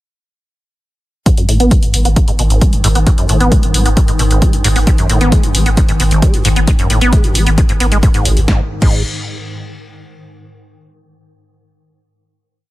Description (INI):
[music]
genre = driving peak-time techno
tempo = 133 BPM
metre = 4/4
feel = straight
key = G# minor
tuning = A4 = 442 Hz
[part]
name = acid bass, saw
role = riff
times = 1.3-9.0 s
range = G#1 to B3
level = -17 LUFS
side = equal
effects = analog chorus, sidechain pumping, digital delay
[part]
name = swarming drone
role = drone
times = 1.9-8.5 s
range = G#2 to D#3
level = -22 LUFS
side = left 1 dB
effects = built-in reverb, sidechain pumping
[part]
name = electronic kick drum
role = drums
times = 1.3-8.9 s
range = none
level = -11 LUFS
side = equal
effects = none
[part]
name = punchy analog drum machine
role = drums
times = 1.3-8.9 s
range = crash cymbal, hi-hat, snare drum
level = -20 LUFS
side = left 1 dB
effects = sidechain pumping on hats, sidechain pumping on cymbals
[part]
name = saturated sub bass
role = bass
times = 1.4-9.0 s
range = G#1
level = -14 LUFS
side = equal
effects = overdrive, sidechain pumping, low-pass filter
[sound]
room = little or no reverb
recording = lossy compression artefacts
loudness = -10 LUFS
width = side -17 dB against mid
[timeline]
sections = 1.3-8.5 groove; 8.5-10.3 final note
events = filter sweep on acid bass 1.3-8.5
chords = 1.3 G#5; 8.5 N.C.